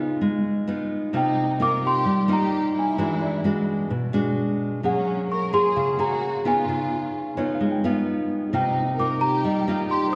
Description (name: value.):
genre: bossa nova.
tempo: 130 BPM.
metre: 4/4.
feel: straight.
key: unclear.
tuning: A4 = 436 Hz.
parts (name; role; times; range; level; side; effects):
nylon-string guitar; accompaniment; 0.0-10.2 s; B2 to Ab4; -25 LUFS; equal; none.
rich studio violin section; second line; 1.1-10.2 s; Db4 to C5; -35 LUFS; equal; none.
celesta; melody; 1.2-10.2 s; Gb5 to D6; -28 LUFS; equal; none.
warm baby grand piano; accompaniment; 3.2-10.2 s; Cb5 to Bb5; -38 LUFS; equal; none.
room: wet church reverb, RT60 2.7 s.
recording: recorded in a church or concert hall.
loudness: -23 LUFS.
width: mono.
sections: 0.0-10.2 A section.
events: none.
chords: 0.0 Db9; 1.1 Cm7; 3.0 E9; 4.8 Gbmaj9; 6.7 Db9; 8.5 Cm7.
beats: 0.22 0.68 | 1.14 1.60 2.07 2.53 | 2.99 3.45 3.91 4.38 | 4.84 5.30 5.76 6.22 | 6.68 7.14 7.61 8.07 | 8.53 8.99 9.45 9.91.